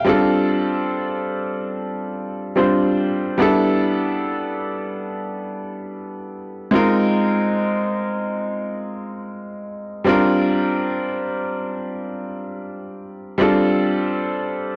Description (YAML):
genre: R&B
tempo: free time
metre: none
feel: none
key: unclear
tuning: A4 = 437 Hz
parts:
  - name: bright grand piano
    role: solo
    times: 0.0-14.8 s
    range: G3 to F5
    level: -22 LUFS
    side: equal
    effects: none
room: light reverb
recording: dry, gritty hardware recording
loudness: -21 LUFS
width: mono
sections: 0.1-14.8 A section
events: none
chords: 0.1 G9sus4; 3.4 A9sus4; 6.7 Bb9sus4; 10.1 C9sus4; 13.4 G9sus4